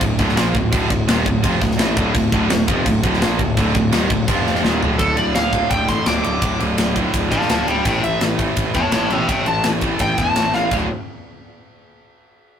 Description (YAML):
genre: heavy metal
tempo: 168 BPM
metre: 4/4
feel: straight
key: D minor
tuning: A4 = 440 Hz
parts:
  - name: high-gain distorted guitar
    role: riff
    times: 0.0-10.9 s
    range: D2 to Bb3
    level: -26 LUFS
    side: left 6 dB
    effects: distortion
  - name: thick fuzz guitar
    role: riff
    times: 0.0-5.0 s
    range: D2 to Bb3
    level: -24 LUFS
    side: equal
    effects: none
  - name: tight distorted guitar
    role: riff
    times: 0.0-10.9 s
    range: D2 to Bb3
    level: -22 LUFS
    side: right 5 dB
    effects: distortion
  - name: fuzz picked electric bass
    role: bass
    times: 0.0-10.9 s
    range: D1 to E2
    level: -23 LUFS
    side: equal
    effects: overdrive
  - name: tight metal drum kit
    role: drums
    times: 0.0-10.8 s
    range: crash cymbal, kick drum, ride cymbal, snare drum, toms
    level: -21 LUFS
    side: left 1 dB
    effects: none
  - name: muted chamber string section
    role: sustained chords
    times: 2.1-5.0 s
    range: F3 to C5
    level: -35 LUFS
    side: right 1 dB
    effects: none
  - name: high-gain lead guitar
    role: melody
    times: 5.0-10.7 s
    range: A4 to D6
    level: -20 LUFS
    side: left 1 dB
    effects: distortion
room: light reverb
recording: rough rehearsal-room recording, tube saturation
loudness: -15 LUFS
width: side -8 dB against mid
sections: 0.0-5.0 A section; 5.0-10.7 B section; 10.7-12.2 C section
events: drum fill 4.6-5.0, 10.5; lead electric guitar solo 5.0-10.7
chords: 0.0 Dm; 4.3 F5; 4.6 Dm; 7.8 A5; 10.7 D5